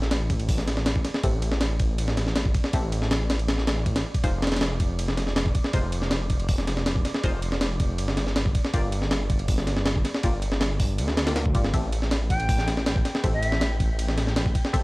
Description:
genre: drum and bass, jungle.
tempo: 160 BPM.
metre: 4/4.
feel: straight.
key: A phrygian.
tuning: A4 = 440 Hz.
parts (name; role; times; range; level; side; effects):
filtered dub chord stab; stabs; 0.0-14.8 s; Ab3 to E5; -34 LUFS; left 2 dB; chorus, dub echo.
detuned saw bass; bass; 0.0-14.8 s; F1 to D2; -26 LUFS; equal; tube saturation.
breakbeat sampler-style drum kit; drums; 0.0-14.8 s; hi-hat, kick drum, ride cymbal, snare drum; -24 LUFS; equal; none.
impact; sound effects; 0.0-1.2 s; none; barely audible; none; none.
wind-like tuned noise texture; texture; 0.3-14.8 s; D5 to G5; -41 LUFS; right 2 dB; built-in reverb.
breathy bright jazz flute; melody; 12.3-13.7 s; E5 to G5; -31 LUFS; equal; dub echo.
room: little or no reverb.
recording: dry, gritty hardware recording, vinyl crackle.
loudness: -22 LUFS.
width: side -22 dB against mid.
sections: 0.0-14.8 A section.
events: impact 0.0-1.2.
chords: 0.0 Am7; 4.2 Fm7; 8.0 Gm7; 11.7 Am7.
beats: 0.11 0.49 0.86 | 1.24 1.61 1.99 2.36 | 2.74 3.11 3.49 3.86 | 4.24 4.61 4.99 5.36 | 5.74 6.11 6.49 6.86 | 7.24 7.61 7.99 8.36 | 8.74 9.11 9.49 9.86 | 10.24 10.61 10.99 11.36 | 11.74 12.11 12.49 12.86 | 13.24 13.61 13.99 14.36 | 14.74.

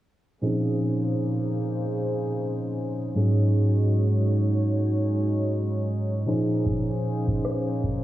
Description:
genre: contemporary R&B.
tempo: 77 BPM.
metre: 4/4.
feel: swing 58% on 16ths.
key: Bb minor.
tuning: A4 = 440 Hz.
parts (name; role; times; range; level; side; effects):
tine electric piano; accompaniment; 0.4-8.0 s; Ab2 to C5; -24 LUFS; right 1 dB; medium stereo tremolo, cassette tape.
clear studio string section; sustained chords; 0.4-8.0 s; Db3 to Db5; -30 LUFS; left 1 dB; cassette tape.
booming analog drum machine; drums; 6.7-8.0 s; kick drum, rim click; -29 LUFS; equal; cassette tape.
room: moderate booth ambience, RT60 0.2 s.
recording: home recording on cassette, low-pass filter, small room ambience.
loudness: -23 LUFS.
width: side -14 dB against mid.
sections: 0.4-8.0 A section.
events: none.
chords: 0.4 Bbm11; 3.2 Ab7sus4; 6.3 Bbm11.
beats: | 0.42 1.20 1.98 2.76 | 3.54 4.32 5.10 5.88 | 6.66 7.44.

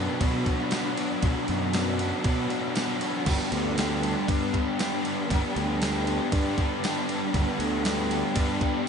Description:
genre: rock, shoegaze and dream pop.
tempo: 118 BPM.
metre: 4/4.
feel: straight.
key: unclear.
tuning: A4 = 440 Hz.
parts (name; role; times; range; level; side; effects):
overdriven electric guitar; riff; 0.0-8.9 s; B2 to B4; -29 LUFS; left 7 dB; analog chorus.
overdriven electric guitar; riff; 0.0-8.9 s; G2 to D4; -34 LUFS; equal; ensemble chorus.
overdriven semi-hollow guitar; riff; 0.0-8.9 s; G2 to G4; -31 LUFS; right 8 dB; reverse reverb.
fuzz picked electric bass; bass; 0.0-8.6 s; G1 to B2; -30 LUFS; equal; overdrive.
crisp 8-bit digital drum machine; drums; 0.2-8.7 s; crash cymbal, kick drum, ride cymbal, snare drum; -30 LUFS; equal; none.
tambourine; percussion; 0.7-8.0 s; none; -44 LUFS; right 7 dB; none.
room: moderate lush hall reverb, RT60 1.6 s, digital ambience.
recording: dreamy mix soaked in reverb, nothing above 10.3 kHz.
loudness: -24 LUFS.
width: side -6 dB against mid.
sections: 0.0-8.9 A section.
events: none.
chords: 0.0 Bm; 3.3 G.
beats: 0.21 0.72 | 1.23 1.74 2.25 2.76 | 3.27 3.78 4.29 4.80 | 5.31 5.82 6.33 6.83 | 7.34 7.85 8.36 8.87.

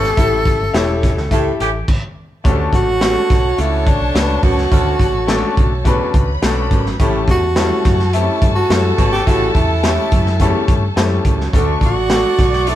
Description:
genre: uptempo 1960s-style soul.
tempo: 106 BPM.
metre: 4/4.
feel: straight.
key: D major.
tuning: A4 = 440 Hz.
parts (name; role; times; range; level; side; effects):
breathy tenor saxophone; melody; 0.0-12.8 s; D4 to A4; -19 LUFS; right 2 dB; none.
warm horn section; second line; 0.0-12.8 s; E3 to D5; -26 LUFS; equal; none.
warm studio string section; second line; 0.0-12.8 s; C#4 to C#6; -26 LUFS; left 3 dB; none.
warm baritone saxophone; riff; 0.0-11.8 s; D2 to B2; -25 LUFS; right 6 dB; none.
vintage muted fingered electric bass; bass; 0.0-12.8 s; E1 to G2; -20 LUFS; equal; none.
crunchy breakbeat drum kit; drums; 0.0-12.8 s; crash cymbal, hi-hat, kick drum, snare drum; -16 LUFS; equal; none.
clear grand piano; accompaniment; 0.2-12.8 s; G3 to E5; -21 LUFS; left 4 dB; none.
room: light reverb.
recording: band playing live in one room.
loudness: -13 LUFS.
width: side -12 dB against mid.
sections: 0.0-2.5 A section; 2.5-12.8 B section.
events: stop 1.9-2.5.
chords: 0.0 A7; 2.5 Dmaj7; 7.0 A7; 11.5 Dmaj7.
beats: | 0.18 0.75 1.32 1.89 | 2.45 3.02 3.59 4.16 | 4.73 5.30 5.86 6.43 | 7.00 7.57 8.13 8.70 | 9.27 9.84 10.40 10.97 | 11.54 12.10 12.67.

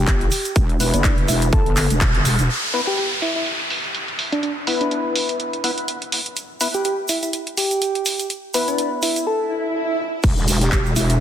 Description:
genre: bass house.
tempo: 124 BPM.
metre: 4/4.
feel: swing 56% on 16ths.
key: E minor.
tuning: A4 = 439 Hz.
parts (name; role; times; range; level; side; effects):
soft struck synth lead; melody; 0.0-11.2 s; D4 to A4; -25 LUFS; equal; chorus, cassette tape, dub echo.
wobble bass; bass; 0.0-2.5, 10.2-11.2 s; E1 to G1; -19 LUFS; equal; chorus, sidechain pumping.
big-room dance drum kit; drums; 0.1-11.2 s; crash cymbal, handclaps, hi-hat; -24 LUFS; equal; overdrive, low-pass filter on hats, low-pass filter on snare, low-pass filter on cymbals.
electronic kick drum; drums; 0.1-2.1, 10.2-10.8 s; none; -19 LUFS; equal; overdrive.
tube shaker; percussion; 0.1-2.5, 6.4-11.2 s; none; -30 LUFS; right 3 dB; none.
percussive organ stab; stabs; 0.8-9.3 s; B3 to B4; -25 LUFS; left 3 dB; ensemble chorus, sidechain pumping, dub echo.
downlifter, swell and impact; sound effects; 2.5-6.4, 9.4-11.2 s; none; -25 LUFS; right 1 dB; none.
room: moderate lush hall reverb, RT60 2.1 s.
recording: dense, heavily limited modern master.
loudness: -18 LUFS.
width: side -10 dB against mid.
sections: 0.0-2.5 A section; 2.5-10.2 B section.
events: band accent 2.0; swell 9.4-10.2; impact 10.2-11.2.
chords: 0.0 E5.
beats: 0.07 | 0.56 1.04 1.53 2.01 | 2.49 2.98 3.46 3.95 | 4.43 4.91 5.40 5.88 | 6.37 6.85 7.33 7.82 | 8.30 8.79 9.27 9.75 | 10.24 10.72.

